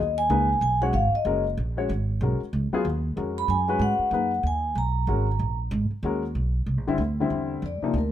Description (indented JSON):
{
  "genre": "modal jazz",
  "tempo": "188 BPM",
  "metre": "3/4",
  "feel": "swing 62% on 8ths",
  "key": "unclear",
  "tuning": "A4 = 440 Hz",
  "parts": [
    { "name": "vibraphone with soft mallets", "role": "melody", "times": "0.0-5.6, 7.7-8.1 s", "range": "Bb4 to B5", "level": "-25 LUFS", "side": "equal", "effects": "none" },
    { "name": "upright bass", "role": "bass", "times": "0.0-8.1 s", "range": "F#1 to G#2", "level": "-26 LUFS", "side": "right 1 dB", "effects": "none" },
    { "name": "warm baby grand piano", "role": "accompaniment", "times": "0.3-7.9 s", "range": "C3 to C#5", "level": "-28 LUFS", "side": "left 4 dB", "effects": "none" }
  ],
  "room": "light reverb",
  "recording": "none",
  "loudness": "-23 LUFS",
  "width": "side -11 dB against mid",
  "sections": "0.0-7.6 A section",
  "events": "none",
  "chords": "0.0 G#m9; 6.7 C"
}